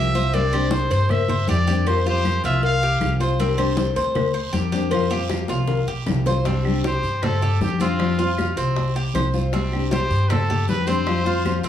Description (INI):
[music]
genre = latin, Cuban son and guajira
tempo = 156 BPM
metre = 4/4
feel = straight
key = unclear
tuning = A4 = 440 Hz
[part]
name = bright trumpet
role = melody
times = 0.0-3.2, 6.9-11.6 s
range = F4 to F5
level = -24 LUFS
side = equal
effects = none
[part]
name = nylon-string guitar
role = accompaniment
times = 0.0-11.7 s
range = C3 to G4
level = -25 LUFS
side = left 4 dB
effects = none
[part]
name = Cuban tres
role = arpeggios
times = 0.0-11.7 s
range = C4 to C5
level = -27 LUFS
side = right 1 dB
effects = none
[part]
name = upright bass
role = bass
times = 0.0-11.7 s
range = B1 to G2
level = -23 LUFS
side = equal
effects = none
[part]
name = congas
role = percussion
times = 0.1-11.7 s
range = none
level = -28 LUFS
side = left 2 dB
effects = none
[part]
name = guiro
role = percussion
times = 0.1-11.7 s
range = none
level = -39 LUFS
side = right 6 dB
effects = none
[part]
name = cowbell and bongos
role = percussion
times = 0.3-11.7 s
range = none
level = -30 LUFS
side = left 7 dB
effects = none
[part]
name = claves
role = percussion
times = 0.5-11.6 s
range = none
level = -38 LUFS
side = right 1 dB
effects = none
[sound]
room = light reverb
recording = small room ambience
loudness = -18 LUFS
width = side -10 dB against mid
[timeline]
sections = 0.0-6.5 A section; 6.5-11.7 B section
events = drum fill 5.3-6.5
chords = 0.3 Csus2; 1.9 Fsus2; 3.4 Csus2; 4.9 Fsus2; 6.5 Csus2; 8.0 Fsus2; 9.5 Csus2; 11.1 Fsus2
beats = | 0.34 0.72 1.10 1.49 | 1.87 2.25 2.63 3.01 | 3.40 3.78 4.16 4.54 | 4.93 5.31 5.69 6.08 | 6.46 6.84 7.23 7.61 | 8.00 8.38 8.76 9.15 | 9.53 9.91 10.30 10.68 | 11.07 11.45